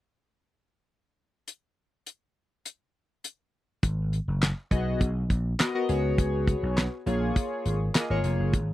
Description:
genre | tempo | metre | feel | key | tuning
early-eighties boogie funk | 102 BPM | 4/4 | straight | unclear | A4 = 442 Hz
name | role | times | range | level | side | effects
damped 70s drum kit | drums | 1.5-8.7 s | handclaps, hi-hat, kick drum, snare drum | -25 LUFS | equal | none
vintage slap bass | bass | 3.8-8.7 s | E#1 to C#2 | -27 LUFS | equal | none
chorused polysynth | accompaniment | 4.7-8.5 s | A#3 to D#5 | -29 LUFS | left 1 dB | none
room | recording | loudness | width
little or no reverb | dry, close 1970s-style studio recording | -24 LUFS | side -15 dB against mid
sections
1.5-3.8 A section; 3.8-8.7 B section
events
none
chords
1.5 N.C.; 3.8 G#m7; 5.0 Bmaj7; 5.9 C#7sus4; 7.1 A#m7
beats
| 1.48 2.06 2.65 3.24 | 3.83 4.42 5.01 5.59 | 6.18 6.77 7.36 7.95 | 8.54

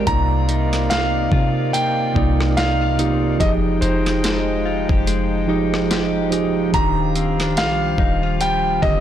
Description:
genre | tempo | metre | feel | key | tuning
contemporary R&B | 72 BPM | 4/4 | swing 58% on 16ths | C minor | A4 = 440 Hz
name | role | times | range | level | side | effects
mellow tine electric piano | accompaniment | 0.0-9.0 s | C3 to D5 | -22 LUFS | right 5 dB | none
pedal harmonium | sustained chords | 0.0-9.0 s | C3 to G5 | -27 LUFS | left 2 dB | none
direct-recorded clean electric guitar | arpeggios | 0.0-9.0 s | C3 to Bb4 | -26 LUFS | left 10 dB | none
soft 808-style bass | bass | 0.0-9.0 s | Eb1 to C3 | -23 LUFS | left 1 dB | none
clear grand piano | melody | 0.1-9.0 s | C5 to Bb5 | -23 LUFS | right 2 dB | none
dusty soul sampler-style drum kit | drums | 0.1-9.0 s | hi-hat, kick drum, rim click, snare drum | -22 LUFS | left 1 dB | overdrive
room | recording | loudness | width
light reverb | blown-out, overdriven recording, overdrive | -16 LUFS | side -10 dB against mid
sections
0.0-9.0 A section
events
none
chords
0.1 Cm11; 3.4 Fm9; 6.7 Ebmaj9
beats
| 0.07 0.91 1.74 2.58 | 3.41 4.24 5.08 5.91 | 6.74 7.58 8.41

